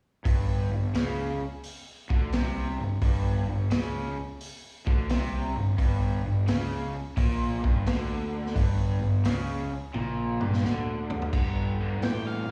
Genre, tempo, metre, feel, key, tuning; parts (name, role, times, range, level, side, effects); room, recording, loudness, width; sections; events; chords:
blues rock power trio and southern rock; 87 BPM; 4/4; swing 68% on 8ths; G minor; A4 = 442 Hz
raw garage guitar; riff; 0.3-12.4 s; G2 to E3; -36 LUFS; equal; overdrive, slapback echo
fuzz fingered electric bass; bass; 0.3-12.5 s; G1 to A2; -31 LUFS; equal; overdrive
vintage drum kit; drums; 0.3-12.2 s; crash cymbal, hi-hat, kick drum, snare drum, toms; -32 LUFS; equal
octave-fuzz lead guitar; melody; 12.0-12.5 s; F5 to G5; -40 LUFS; equal; distortion, slapback echo
small room ambience; live gig heard through the venue's PA, club reverb; -28 LUFS; mono
0.3-11.3 A section; 11.3-12.5 B section
drum fill 9.9-11.3; lead electric guitar solo 11.3-12.5
0.3 Gm; 11.3 G5